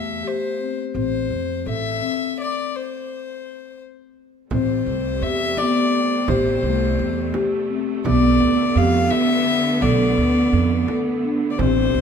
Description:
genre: contemporary instrumental, chamber music in an uneven meter.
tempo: 169 BPM (eighths).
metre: 5/8.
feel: straight.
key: A minor.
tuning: A4 = 440 Hz.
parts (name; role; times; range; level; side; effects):
rich violin; melody; 0.0-12.0 s; C5 to F5; -24 LUFS; left 6 dB; none.
marimba with soft mallets; arpeggios; 0.0-12.0 s; A3 to A4; -21 LUFS; left 2 dB; none.
upright bass; bass; 0.0-12.0 s; A1 to F2; -23 LUFS; right 4 dB; none.
clear symphonic string section; sustained chords; 4.5-12.0 s; C3 to B3; -27 LUFS; right 3 dB; none.
frame drum; percussion; 4.5-11.9 s; none; -29 LUFS; right 5 dB; none.
room: moderate scoring stage reverb, RT60 1.7 s.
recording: minimal, uncompressed stereo recording.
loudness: -18 LUFS.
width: side -7 dB against mid.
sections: 0.0-4.5 A section; 4.5-12.0 A section.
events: stop 2.7-4.5.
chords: 0.0 Am7 (rootless); 1.0 Am; 2.7 N.C.; 4.5 Am9; 8.1 Bm7b5.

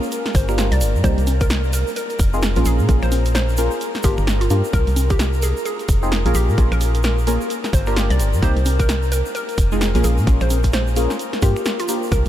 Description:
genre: UK garage, two-step garage.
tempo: 130 BPM.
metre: 4/4.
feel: swing 60% on 16ths.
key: unclear.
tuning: A4 = 440 Hz.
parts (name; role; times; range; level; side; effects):
ethereal airy pad; sustained chords; 0.0-12.3 s; Bb4 to F5; -31 LUFS; left 2 dB; ensemble chorus, built-in reverb, sidechain pumping.
deep mellow chord stab; stabs; 0.0-12.0 s; G3 to Bb4; -24 LUFS; equal; chorus, vintage 12-bit sampler grit, ping-pong delay.
tube shaker; percussion; 0.0-12.3 s; none; -34 LUFS; right 3 dB; none.
punchy analog drum machine; drums; 0.1-12.3 s; congas, finger snaps, hi-hat, snare drum; -26 LUFS; equal; none.
hollow square pluck; melody; 0.3-12.3 s; F4 to D5; -27 LUFS; equal; chorus, diffuse ambient delay.
organ-like FM bass; bass; 0.3-12.3 s; F1 to Bb2; -18 LUFS; equal; sidechain pumping.
electronic kick drum; drums; 0.3-12.2 s; none; -18 LUFS; equal; none.
room: light reverb.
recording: none.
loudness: -16 LUFS.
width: side -12 dB against mid.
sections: 0.0-12.3 A section.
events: none.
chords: 0.1 Gm7; 1.0 Cm7; 2.0 Fm7; 2.7 Bbm7; 3.8 Gm7; 4.7 Abmaj9/C; 5.7 Fm7; 6.3 Bbm7; 7.5 Gm7; 8.4 Cm7; 9.3 Fm7; 10.0 Bbm7; 11.2 Gm7.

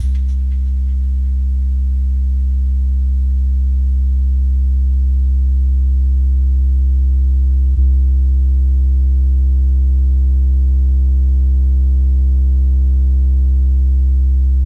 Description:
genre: techno.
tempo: free time.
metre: none.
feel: none.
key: unclear.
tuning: A4 = 440 Hz.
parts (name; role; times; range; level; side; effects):
soft dub sub bass; bass; 0.0-14.7 s; C2; -15 LUFS; equal; none.
room: little or no reverb.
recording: none.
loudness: -15 LUFS.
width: mono.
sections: 0.0-14.7 A section.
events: none.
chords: none.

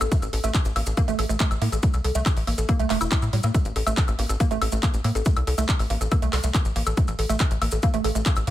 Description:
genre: psychedelic trance.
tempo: 140 BPM.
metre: 4/4.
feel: straight.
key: A phrygian.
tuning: A4 = 439 Hz.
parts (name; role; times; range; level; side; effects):
woody wave-folded pluck; riff; 0.0-8.5 s; G3 to A4; -29 LUFS; moving between left 1 dB and right 6 dB; chorus, auto-pan, vintage 12-bit sampler grit, sidechain pumping, ping-pong delay.
tight sequencer bass; bass; 0.0-8.5 s; E1 to A2; -24 LUFS; equal; none.
techno drum kit; drums; 0.0-8.5 s; handclaps, hi-hat, woodblock; -29 LUFS; left 1 dB; none.
maracas; percussion; 0.0-8.4 s; none; -38 LUFS; left 3 dB; none.
electronic kick drum; drums; 0.1-8.3 s; none; -22 LUFS; equal; none.
room: digital ambience.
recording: none.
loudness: -20 LUFS.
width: side -13 dB against mid.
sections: 0.0-8.5 A section.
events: none.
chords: 0.0 A5.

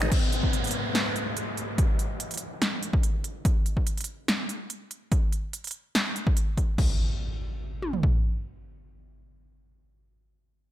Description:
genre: heavy wobble dubstep.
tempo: 144 BPM.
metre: 4/4.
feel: half-time.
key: G# minor.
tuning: A4 = 442 Hz.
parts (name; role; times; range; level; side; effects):
evolving wavetable pad; sustained chords; 0.0-1.8 s; G#2 to D#5; -37 LUFS; right 1 dB; phaser, built-in reverb, sidechain pumping.
big-room dance drum kit; drums; 0.0-6.9 s; crash cymbal, finger snaps, hi-hat, snare drum; -29 LUFS; equal; overdrive.
big-room dance drum kit; drums; 0.1-8.1 s; kick drum, toms; -24 LUFS; equal; overdrive.
downlifter and impact; sound effects; 0.1-3.5, 6.8-10.0 s; none; -33 LUFS; left 1 dB; none.
room: little or no reverb.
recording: none.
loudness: -25 LUFS.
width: side -13 dB against mid.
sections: 0.1-6.8 A section; 6.8-10.1 B section.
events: none.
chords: 0.1 G#m; 3.5 N.C..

